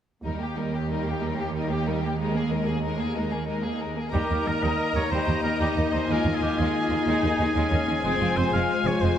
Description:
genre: cinematic, heroic adventure film score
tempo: 123 BPM (dotted quarters)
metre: 12/8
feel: straight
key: Eb mixolydian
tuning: A4 = 442 Hz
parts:
  - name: warm symphonic violin section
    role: second line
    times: 0.2-9.2 s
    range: G3 to Eb5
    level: -32 LUFS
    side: left 3 dB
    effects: none
  - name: rich symphonic viola section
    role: accompaniment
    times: 0.2-9.2 s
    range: G3 to Bb4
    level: -31 LUFS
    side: right 1 dB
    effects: none
  - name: rich symphonic cello section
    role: bass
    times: 0.2-9.1 s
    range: Eb2 to F2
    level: -29 LUFS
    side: right 3 dB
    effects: none
  - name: rich symphonic double bass section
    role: bass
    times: 0.2-0.5, 4.1-9.1 s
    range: F1 to Eb2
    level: -30 LUFS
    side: right 2 dB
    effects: none
  - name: warm symphonic violin section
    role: melody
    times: 0.3-9.2 s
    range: G4 to Bb5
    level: -32 LUFS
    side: left 4 dB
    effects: none
  - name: clear oboe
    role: second line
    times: 4.1-9.2 s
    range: G4 to F5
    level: -29 LUFS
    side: equal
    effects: none
  - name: mellow French horn section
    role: sustained chords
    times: 4.1-9.2 s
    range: Ab3 to F4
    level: -28 LUFS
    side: left 3 dB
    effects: none
room: wet scoring stage reverb, RT60 1.6 s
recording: none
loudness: -23 LUFS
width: side -9 dB against mid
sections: 0.2-4.1 A section; 4.1-9.2 B section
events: none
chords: 0.2 Eb; 2.2 Absus2/Eb; 4.1 Eb; 6.1 Absus2/Eb; 8.0 Fm

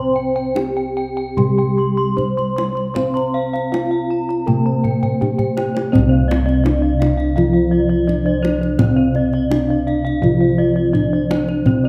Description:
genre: Javanese gamelan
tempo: 83 BPM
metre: 4/4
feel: uneven beats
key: C slendro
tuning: A4 = 439 Hz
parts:
  - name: gamelan-type bronze metallophone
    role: melody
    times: 0.0-11.9 s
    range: C4 to C5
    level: -22 LUFS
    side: equal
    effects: none
  - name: gamelan-type bronze metallophone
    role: accompaniment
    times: 0.0-11.9 s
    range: C3 to C4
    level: -24 LUFS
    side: equal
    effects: none
  - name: gamelan-type bossed gongs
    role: arpeggios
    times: 0.0-11.9 s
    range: C5 to C6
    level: -30 LUFS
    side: equal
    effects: none
  - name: gamelan-type bronze metallophone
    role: arpeggios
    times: 0.0-11.9 s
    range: C5 to C6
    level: -31 LUFS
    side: equal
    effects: none
  - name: gamelan-type bossed gongs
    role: bass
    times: 0.0-11.9 s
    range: C2 to C5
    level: -23 LUFS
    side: equal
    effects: none
  - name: kendang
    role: percussion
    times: 0.6-11.8 s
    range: none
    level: -25 LUFS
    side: equal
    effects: none
room: moderate recital hall reverb, RT60 1.4 s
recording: close, detailed microphones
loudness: -17 LUFS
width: mono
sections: 0.0-5.9 A section; 5.9-11.9 B section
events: drum fill 5.0-5.9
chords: none

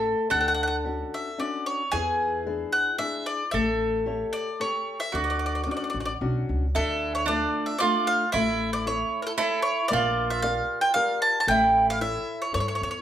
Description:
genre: italian folk, Italian serenade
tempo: 113 BPM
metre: 3/4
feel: straight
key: D major, D harmonic minor from 6.8 s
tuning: A4 = 444 Hz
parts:
  - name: mandolin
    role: second line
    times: 0.0-12.8 s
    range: D4 to A4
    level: -29 LUFS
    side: right 3 dB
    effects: none
  - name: flamenco guitar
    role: accompaniment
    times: 0.0-13.0 s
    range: D3 to D5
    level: -31 LUFS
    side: left 4 dB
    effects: none
  - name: upright bass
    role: bass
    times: 0.0-13.0 s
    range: A1 to G2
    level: -32 LUFS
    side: equal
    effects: none
  - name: bowl-back mandolin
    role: melody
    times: 0.3-13.0 s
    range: A4 to A5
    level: -25 LUFS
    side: equal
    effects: none
room: moderate large studio reverb, RT60 0.8 s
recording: band playing live in one room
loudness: -23 LUFS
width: side -10 dB against mid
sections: 0.0-6.8 A section; 6.8-13.0 B section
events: none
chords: 0.3 Dmaj7; 1.9 E7; 3.5 A7; 5.1 Dmaj7; 6.8 Dm; 8.3 A; 9.9 Gm/Bb; 11.5 A

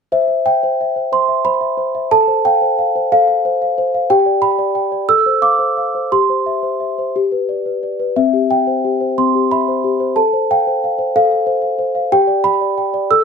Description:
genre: classical, lullaby for celesta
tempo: 60 BPM (dotted quarters)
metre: 6/8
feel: rubato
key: C major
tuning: A4 = 440 Hz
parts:
  - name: celesta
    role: solo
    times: 0.1-13.2 s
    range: C4 to E6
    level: -13 LUFS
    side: equal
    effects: slapback echo
room: little or no reverb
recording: close, detailed microphones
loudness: -13 LUFS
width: side -6 dB against mid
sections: 0.1-13.2 A section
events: none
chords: 0.1 C; 2.1 F/A; 4.1 G; 5.1 F/A; 6.1 C/G; 7.1 G; 8.2 C; 10.2 F/A; 12.1 G

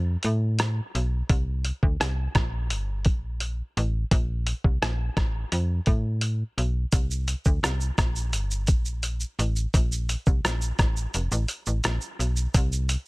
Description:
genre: indie pop, bedroom pop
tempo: 85 BPM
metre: 4/4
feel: straight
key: unclear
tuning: A4 = 440 Hz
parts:
  - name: slap-like FM bass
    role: bass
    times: 0.0-13.0 s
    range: F1 to A2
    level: -26 LUFS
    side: equal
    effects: none
  - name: lo-fi sampler-style drum kit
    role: drums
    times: 0.2-13.1 s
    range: hi-hat, kick drum, rim click, shaker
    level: -24 LUFS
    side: equal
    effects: soft clipping on snare
room: little or no reverb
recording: dense, heavily limited modern master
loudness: -23 LUFS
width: side -26 dB against mid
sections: 0.0-12.5 A section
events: none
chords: none

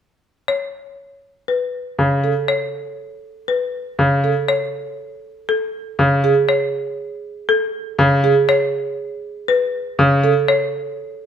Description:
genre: classical, minimalist pattern music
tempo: 120 BPM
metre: 4/4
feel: straight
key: A major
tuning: A4 = 441 Hz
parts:
  - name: folk marimba with hard mallets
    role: melody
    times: 0.5-10.8 s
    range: A4 to C#5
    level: -20 LUFS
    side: left 4 dB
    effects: none
  - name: bright concert grand piano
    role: accompaniment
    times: 2.0-10.3 s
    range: C#3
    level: -16 LUFS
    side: left 1 dB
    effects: none
  - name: marimba with soft mallets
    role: arpeggios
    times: 2.2-10.6 s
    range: G#4 to A4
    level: -21 LUFS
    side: right 7 dB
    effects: none
room: moderate large studio reverb, RT60 1.3 s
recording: none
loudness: -16 LUFS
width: side -8 dB against mid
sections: 0.5-11.3 A section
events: none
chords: 0.5 A; 4.5 N.C.; 8.5 A/C#

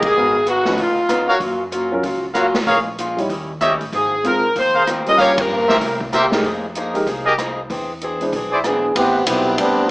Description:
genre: jazz, big band swing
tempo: 191 BPM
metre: 4/4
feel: swing 62% on 8ths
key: unclear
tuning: A4 = 440 Hz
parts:
  - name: picked swing-style acoustic guitar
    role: accompaniment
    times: 0.0-9.8 s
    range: G2 to B4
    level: -24 LUFS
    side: left 1 dB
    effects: none
  - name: clear trumpet section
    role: stabs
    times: 0.0-8.6 s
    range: E4 to F5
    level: -18 LUFS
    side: equal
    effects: none
  - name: upright bass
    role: bass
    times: 0.0-9.9 s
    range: Ab1 to G2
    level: -33 LUFS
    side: equal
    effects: none
  - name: swinging big-band drum kit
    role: drums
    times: 0.0-9.7 s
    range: hi-hat, kick drum, ride cymbal, rim click, snare drum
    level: -25 LUFS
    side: equal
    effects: none
  - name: edgy saxophone section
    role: melody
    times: 0.1-1.3, 3.9-6.0 s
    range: F4 to Eb5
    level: -16 LUFS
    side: equal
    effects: none
  - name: clear grand piano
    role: accompaniment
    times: 0.2-8.3 s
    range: F3 to Db5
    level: -22 LUFS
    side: equal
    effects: none
  - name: clear trombone section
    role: second line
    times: 8.7-9.9 s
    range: E3 to G#4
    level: -16 LUFS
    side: equal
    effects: none
room: moderate large studio reverb, RT60 0.9 s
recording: small speaker sound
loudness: -15 LUFS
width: side -23 dB against mid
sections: 0.0-8.9 A section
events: band accent 5.3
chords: 0.1 Abm9; 0.8 Db9; 1.4 Gbmaj7; 2.7 Bbm7; 3.3 Eb7b9; 3.9 Ab69; 5.2 Gm7b5; 5.8 C7; 6.4 Fm11; 7.7 E7b13; 8.9 Am9

